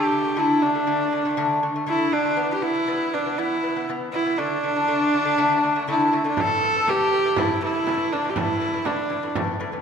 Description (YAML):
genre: mongolian traditional, Mongolian folk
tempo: 120 BPM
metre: 4/4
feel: straight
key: D zhi mode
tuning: A4 = 442 Hz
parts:
  - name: bright horsehead fiddle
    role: melody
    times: 0.0-9.4 s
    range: D4 to A4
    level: -22 LUFS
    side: right 2 dB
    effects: none
  - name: lute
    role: arpeggios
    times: 0.0-9.8 s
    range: A2 to B3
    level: -24 LUFS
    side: left 2 dB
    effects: none
  - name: frame drum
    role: percussion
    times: 6.4-9.5 s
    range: none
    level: -29 LUFS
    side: right 3 dB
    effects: none
room: wet concert hall reverb, RT60 2.2 s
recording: minimal, uncompressed stereo recording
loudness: -20 LUFS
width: side -7 dB against mid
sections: 0.0-6.4 A section; 6.4-9.8 B section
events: none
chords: 0.0 D5; 2.4 E5; 4.4 D5; 6.4 A5